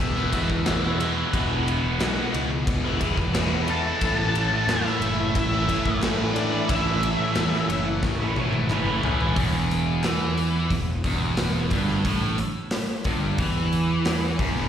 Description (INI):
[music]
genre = classic rock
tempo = 90 BPM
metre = 4/4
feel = straight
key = E major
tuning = A4 = 441 Hz
[part]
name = octave-fuzz lead guitar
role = second line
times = 0.0-1.0, 7.7-9.4 s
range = G#4 to F#5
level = -34 LUFS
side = left 2 dB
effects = distortion, slapback echo
[part]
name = picked twelve-string acoustic guitar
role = accompaniment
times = 0.0-9.4 s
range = E2 to E4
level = -36 LUFS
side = equal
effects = slapback echo
[part]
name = biting overdriven guitar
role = riff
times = 0.0-14.7 s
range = E2 to E4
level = -28 LUFS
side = right 1 dB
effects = phaser, slapback echo
[part]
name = thick fuzz guitar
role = riff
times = 0.0-14.7 s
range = E2 to A3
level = -28 LUFS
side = equal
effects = distortion, slapback echo
[part]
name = fuzz picked electric bass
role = bass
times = 0.0-14.7 s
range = E1 to A2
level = -27 LUFS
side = equal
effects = overdrive
[part]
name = gated 80s drum kit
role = drums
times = 0.2-14.6 s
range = hi-hat, kick drum, ride cymbal, snare drum, toms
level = -27 LUFS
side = equal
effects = none
[part]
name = group handclap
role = percussion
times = 0.7-14.2 s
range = none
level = -43 LUFS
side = equal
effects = none
[part]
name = octave-fuzz lead guitar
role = melody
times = 3.7-7.7 s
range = D5 to A5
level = -28 LUFS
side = left 2 dB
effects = distortion, slapback echo, analog delay
[part]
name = octave-fuzz lead guitar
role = second line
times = 3.7-7.6 s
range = D4 to A4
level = -33 LUFS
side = right 1 dB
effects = distortion, slapback echo
[sound]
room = light reverb, studio ambience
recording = live gig heard through the venue's PA, recital hall reverb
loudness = -21 LUFS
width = side -9 dB against mid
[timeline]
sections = 0.0-9.4 A section; 9.4-14.7 B section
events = drum fill 8.0-9.4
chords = 0.0 E; 4.0 A; 9.4 Emadd11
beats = 0.00 0.67 | 1.34 2.01 2.68 3.35 | 4.02 4.69 5.36 6.03 | 6.70 7.36 8.03 8.70 | 9.37 10.04 10.71 11.38 | 12.05 12.72 13.39 14.06